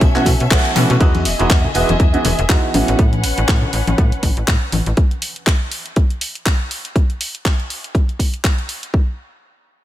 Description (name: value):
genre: filtered disco house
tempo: 121 BPM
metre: 4/4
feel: swing 57% on 16ths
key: unclear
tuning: A4 = 441 Hz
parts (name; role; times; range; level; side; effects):
- rich chamber violin section; sustained chords; 0.0-5.0 s; C#4 to F#5; -24 LUFS; left 2 dB; sidechain pumping, low-pass filter
- slap-like FM bass; bass; 0.0-4.9 s; E1 to B2; -19 LUFS; equal; sidechain pumping, low-pass filter
- electronic kick drum; drums; 0.0-9.1 s; none; -15 LUFS; equal; none
- house drum kit; drums; 0.0-8.9 s; handclaps, hi-hat; -22 LUFS; equal; sidechain pumping on hats
- tambourine and congas; percussion; 0.0-5.0 s; none; -25 LUFS; left 3 dB; none
- clear baby grand piano; accompaniment; 0.1-3.0 s; E3 to F#4; -20 LUFS; right 2 dB; phaser, sidechain pumping, low-pass filter
room: light reverb, small room ambience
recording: none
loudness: -14 LUFS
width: side -13 dB against mid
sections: 0.0-1.0 A section; 1.0-8.9 B section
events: drop 0.0-1.0; band accent 0.5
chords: 0.0 B9sus4; 1.0 Emaj7; 2.7 A69; 5.0 N.C.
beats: 0.01 0.51 | 1.00 1.50 2.00 2.49 | 2.99 3.48 3.98 4.47 | 4.97 5.47 5.96 6.46 | 6.96 7.45 7.95 8.44 | 8.94